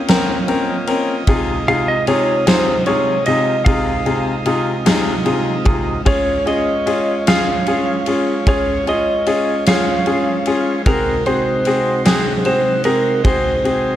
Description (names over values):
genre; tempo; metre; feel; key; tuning
six-eight pop ballad; 50 BPM (dotted quarters); 6/8; straight; unclear; A4 = 440 Hz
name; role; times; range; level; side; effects
clean lap steel guitar; melody; 0.0-14.0 s; Ab4 to F5; -19 LUFS; right 1 dB; none
tonewheel organ; sustained chords; 0.0-14.0 s; C3 to Eb5; -22 LUFS; right 2 dB; slow rotary speaker
bright concert grand piano; accompaniment; 0.1-13.9 s; C3 to Bb4; -19 LUFS; left 3 dB; none
huge arena drum kit; drums; 0.1-13.8 s; kick drum, ride cymbal, snare drum; -20 LUFS; equal; none
room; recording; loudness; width
light reverb, small room ambience; dark, warm production; -14 LUFS; side -12 dB against mid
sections
0.0-14.0 A section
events
none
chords
0.0 Bbmadd9; 1.3 Fm7/C; 6.1 Db; 10.9 Ab7/C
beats
0.09 | 1.28 2.47 | 3.66 4.86 | 6.06 7.27 | 8.47 9.67 | 10.87 12.06 | 13.25